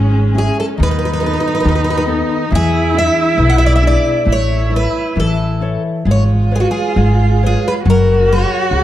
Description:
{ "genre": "fado-style ballad", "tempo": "68 BPM", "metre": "2/4", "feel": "rubato", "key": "C# minor", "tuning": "A4 = 440 Hz", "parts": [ { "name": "picked twelve-string acoustic guitar", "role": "melody", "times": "0.0-8.8 s", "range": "F#4 to F#5", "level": "-18 LUFS", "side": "equal", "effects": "slapback echo" }, { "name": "rich cello", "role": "second line", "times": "0.0-8.8 s", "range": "C#4 to F#4", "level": "-19 LUFS", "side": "right 2 dB", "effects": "none" }, { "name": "nylon-string guitar", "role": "accompaniment", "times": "0.0-8.8 s", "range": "B2 to C#5", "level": "-19 LUFS", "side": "left 4 dB", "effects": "none" }, { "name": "upright bass", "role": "bass", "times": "0.0-8.8 s", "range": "F#1 to E2", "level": "-15 LUFS", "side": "equal", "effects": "none" } ], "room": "moderate recital hall reverb, RT60 1.6 s", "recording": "dark, warm production", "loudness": "-12 LUFS", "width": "side -13 dB against mid", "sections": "0.0-8.8 A section", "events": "none", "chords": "0.0 C#m; 0.8 B7/D#; 2.5 E7; 4.3 A; 6.1 C#7/G#; 7.9 F#add9" }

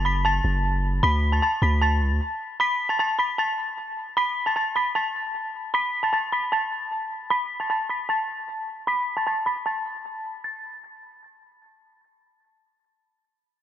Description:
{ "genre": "hip hop", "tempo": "153 BPM", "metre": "4/4", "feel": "half-time", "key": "unclear", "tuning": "A4 = 440 Hz", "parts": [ { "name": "dark detuned synth bell", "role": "melody", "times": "0.0-11.6 s", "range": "A5 to B6", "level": "-23 LUFS", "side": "equal", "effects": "chorus, low-pass filter, analog delay" }, { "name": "long sustained 808-style bass", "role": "bass", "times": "0.0-2.2 s", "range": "F#1 to D2", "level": "-22 LUFS", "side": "equal", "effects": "none" } ], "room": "light reverb, small room ambience", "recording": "echo-heavy mix", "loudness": "-22 LUFS", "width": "side -11 dB against mid", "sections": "0.0-10.4 A section; 10.4-13.6 B section", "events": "filter sweep on synth bell 0.0-10.4", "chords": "0.0 F#m; 1.0 D5; 2.6 Asus2; 10.4 N.C." }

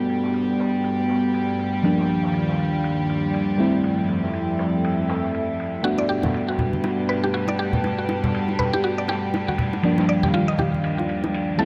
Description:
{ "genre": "deep house", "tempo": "120 BPM", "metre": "4/4", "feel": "swing 58% on 16ths", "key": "G major", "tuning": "A4 = 440 Hz", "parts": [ { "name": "dark analog pad", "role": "sustained chords", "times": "0.0-11.7 s", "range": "Eb3 to F#5", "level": "-30 LUFS", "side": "equal", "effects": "chorus, vintage 12-bit sampler grit" }, { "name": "mellow FM electric piano", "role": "stabs", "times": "0.0-11.7 s", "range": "F3 to F#4", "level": "-27 LUFS", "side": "equal", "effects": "chorus, low-pass filter, tape echo" }, { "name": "warbly tape-like pad", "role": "texture", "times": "0.0-11.7 s", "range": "Eb3 to A5", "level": "-29 LUFS", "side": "equal", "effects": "chorus, built-in reverb, phaser" }, { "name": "warm studio violin section", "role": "texture", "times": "0.0-11.7 s", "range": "G3 to G4", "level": "-34 LUFS", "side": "equal", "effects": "none" }, { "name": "vintage drum kit", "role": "drums", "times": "0.1-11.7 s", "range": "hi-hat, ride cymbal, snare drum", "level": "-38 LUFS", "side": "equal", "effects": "high-pass filter on cymbals, low-pass filter on cymbals, high-pass filter on hats, low-pass filter on hats, high-pass filter on snare, low-pass filter on snare, high-pass filter on room, low-pass filter on room" }, { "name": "mallet-like synth pluck", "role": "arpeggios", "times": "5.8-11.7 s", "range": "F4 to Eb5", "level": "-30 LUFS", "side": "equal", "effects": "analog chorus, dub echo" }, { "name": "bongos and congas", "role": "percussion", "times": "6.0-11.7 s", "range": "none", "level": "-28 LUFS", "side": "equal", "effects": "none" } ], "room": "moderate lush hall reverb, RT60 1.8 s, studio reverb", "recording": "none", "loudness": "-22 LUFS", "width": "mono", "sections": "0.0-11.7 A section", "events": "filter sweep on analog synth pad 0.0-11.7", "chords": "0.0 Gmaj9; 1.8 Ebmaj9; 3.6 Fmaj9; 5.8 Gmaj9; 9.8 Ebmaj9" }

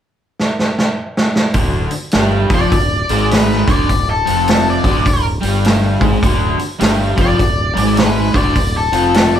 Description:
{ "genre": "blues rock power trio and southern rock", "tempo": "103 BPM", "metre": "4/4", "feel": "swing 63% on 8ths", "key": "unclear", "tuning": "A4 = 441 Hz", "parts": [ { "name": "vintage drum kit", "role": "drums", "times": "0.4-9.3 s", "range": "hi-hat, kick drum, snare drum", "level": "-16 LUFS", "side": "right 1 dB", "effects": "none" }, { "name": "growling fingered electric bass", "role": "bass", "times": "1.5-9.4 s", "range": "D1 to G#1", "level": "-19 LUFS", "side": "equal", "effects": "overdrive" }, { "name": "raw garage guitar", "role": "riff", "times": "1.6-9.4 s", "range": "D2 to G#3", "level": "-17 LUFS", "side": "equal", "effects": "overdrive" }, { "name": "octave-fuzz lead guitar", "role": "melody", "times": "2.5-9.4 s", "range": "A4 to D5", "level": "-18 LUFS", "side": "left 3 dB", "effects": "distortion" } ], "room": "moderate large studio reverb, RT60 0.8 s", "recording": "band playing live in one room", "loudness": "-12 LUFS", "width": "side -10 dB against mid", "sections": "0.0-1.5 A section; 1.5-9.4 B section", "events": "drum fill 0.4-1.5", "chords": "0.0 N.C.; 1.5 Dm" }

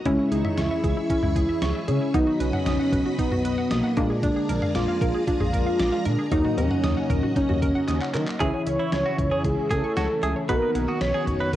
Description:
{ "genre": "synth-pop", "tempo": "115 BPM", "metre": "4/4", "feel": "straight", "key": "C# dorian", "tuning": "A4 = 441 Hz", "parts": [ { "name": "string machine, full ensemble", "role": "sustained chords", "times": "0.0-11.6 s", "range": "C#3 to C#6", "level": "-35 LUFS", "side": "equal", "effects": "ensemble chorus, cassette tape" }, { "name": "wide unison lead", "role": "melody", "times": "0.1-11.6 s", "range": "A#3 to C#5", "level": "-25 LUFS", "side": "equal", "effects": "cassette tape" }, { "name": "funky polysynth comp", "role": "accompaniment", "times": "0.1-11.6 s", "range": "E3 to F#4", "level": "-30 LUFS", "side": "left 1 dB", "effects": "chorus, cassette tape" }, { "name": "analog pluck", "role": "arpeggios", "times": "0.1-11.6 s", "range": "C#4 to B6", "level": "-34 LUFS", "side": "right 2 dB", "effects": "chorus, cassette tape, analog delay" }, { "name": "smooth gliding synth bass", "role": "bass", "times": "0.1-11.6 s", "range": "A#1 to D#3", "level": "-27 LUFS", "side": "equal", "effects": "none" }, { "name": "detuned 8-bit digital drum machine", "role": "drums", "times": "0.1-11.6 s", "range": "cowbell, handclaps, hi-hat, kick drum, snare drum, toms", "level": "-28 LUFS", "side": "equal", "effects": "cassette tape" }, { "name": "direct-recorded clean electric guitar", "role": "second line", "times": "8.4-11.5 s", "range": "E4 to B4", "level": "-30 LUFS", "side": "right 2 dB", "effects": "tremolo, cassette tape, analog delay" } ], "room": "light reverb", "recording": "home recording on cassette", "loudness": "-21 LUFS", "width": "side -13 dB against mid", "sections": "0.0-8.4 A section; 8.4-11.6 B section", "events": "drum fill 7.9-8.4", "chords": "0.1 C#m; 2.1 B; 4.0 A#7; 6.3 D#m; 8.4 C#m; 10.5 B" }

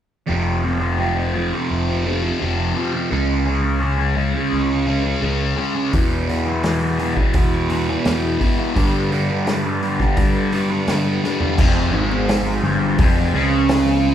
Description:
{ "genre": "psychedelic rock", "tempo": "85 BPM", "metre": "4/4", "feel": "straight", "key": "unclear", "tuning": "A4 = 435 Hz", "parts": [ { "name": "fuzz guitar", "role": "riff", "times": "0.3-14.1 s", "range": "E2 to Db4", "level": "-19 LUFS", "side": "equal", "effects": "distortion, phaser" }, { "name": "fuzz picked electric bass", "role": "bass", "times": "0.3-14.1 s", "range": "F1 to G2", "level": "-22 LUFS", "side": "equal", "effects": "overdrive" }, { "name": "combo organ", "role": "sustained chords", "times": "5.9-14.1 s", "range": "F3 to B4", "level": "-29 LUFS", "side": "right 4 dB", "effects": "none" }, { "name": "vintage drum kit", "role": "drums", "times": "5.9-13.9 s", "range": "crash cymbal, hi-hat, kick drum, snare drum, toms", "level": "-20 LUFS", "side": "equal", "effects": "none" }, { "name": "congas", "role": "percussion", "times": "12.1-14.1 s", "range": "none", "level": "-29 LUFS", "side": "left 4 dB", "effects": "none" } ], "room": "moderate large studio reverb, RT60 0.8 s", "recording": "band playing live in one room", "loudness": "-17 LUFS", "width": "side -10 dB against mid", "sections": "0.3-11.6 A section; 11.6-14.1 B section", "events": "drum fill 11.2-11.6", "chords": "0.3 F5; 3.1 Db5; 5.9 E; 8.8 G; 11.6 Fm" }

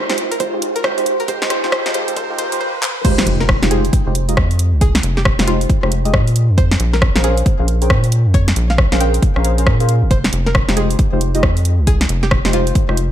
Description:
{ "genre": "UK garage, two-step garage", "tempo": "136 BPM", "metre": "4/4", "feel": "swing 62% on 16ths", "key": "F minor", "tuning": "A4 = 440 Hz", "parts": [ { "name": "string-like resonator pluck", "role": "melody", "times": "0.0-12.7 s", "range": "F4 to G5", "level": "-25 LUFS", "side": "right 1 dB", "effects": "chorus, ping-pong delay" }, { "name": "deep mellow chord stab", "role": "stabs", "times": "0.0-13.0 s", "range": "Ab3 to G5", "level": "-20 LUFS", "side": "equal", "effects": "chorus, ping-pong delay" }, { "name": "riser and impact", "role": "sound effects", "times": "0.0-4.8 s", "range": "none", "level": "-26 LUFS", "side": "equal", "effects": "none" }, { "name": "house drum kit", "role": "drums", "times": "0.1-13.1 s", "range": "crash cymbal, handclaps, hi-hat, rim click, snare drum", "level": "-19 LUFS", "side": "equal", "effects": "none" }, { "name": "electronic kick drum", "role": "drums", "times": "0.4-12.9 s", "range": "none", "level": "-16 LUFS", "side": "equal", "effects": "none" }, { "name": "rubbery square bass", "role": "bass", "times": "3.3-13.1 s", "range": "F1 to Bb2", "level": "-16 LUFS", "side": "equal", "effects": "none" } ], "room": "light reverb", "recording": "dark, warm production, high-pass filter", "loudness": "-13 LUFS", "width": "side -11 dB against mid", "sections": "0.0-3.0 A section; 3.0-13.1 B section", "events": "build-up 0.0-3.0; riser 0.0-3.0; filter sweep on synth stab 0.0-3.0; filter sweep on synth pluck 0.0-3.0; drum fill 2.8; drop 3.0-13.1; impact 3.0-4.8", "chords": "0.0 Abmaj13; 3.0 Fm9; 6.4 Bbm9; 10.1 Fm9" }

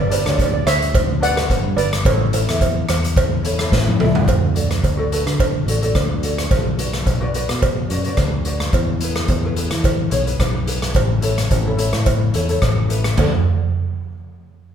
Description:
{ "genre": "calypso", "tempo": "108 BPM", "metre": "4/4", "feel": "swing 54% on 16ths", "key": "D major", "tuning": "A4 = 438 Hz", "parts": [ { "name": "steel pan", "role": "melody", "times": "0.0-3.7 s", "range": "A4 to F#5", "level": "-21 LUFS", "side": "right 3 dB", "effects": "none" }, { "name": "fingered electric bass", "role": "bass", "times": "0.0-13.4 s", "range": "G1 to E3", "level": "-21 LUFS", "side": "left 1 dB", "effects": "none" }, { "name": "ukulele", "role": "accompaniment", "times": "0.1-13.4 s", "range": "D4 to E5", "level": "-26 LUFS", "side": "left 1 dB", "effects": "none" }, { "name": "street-band drum kit", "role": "drums", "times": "0.1-13.3 s", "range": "crash cymbal, hi-hat, kick drum, rim click, snare drum, toms", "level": "-19 LUFS", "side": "equal", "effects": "none" }, { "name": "cowbell", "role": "percussion", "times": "0.1-13.4 s", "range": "none", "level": "-26 LUFS", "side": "right 6 dB", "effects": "none" } ], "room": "moderate large studio reverb, RT60 1.4 s", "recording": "band playing live in one room", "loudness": "-16 LUFS", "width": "side -8 dB against mid", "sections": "0.0-4.3 A section; 4.3-13.2 B section; 13.2-14.7 C section", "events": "drum fill 3.7-4.3", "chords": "0.0 G; 2.1 A; 4.3 D; 6.5 Bm; 8.7 E; 11.0 A; 13.2 D" }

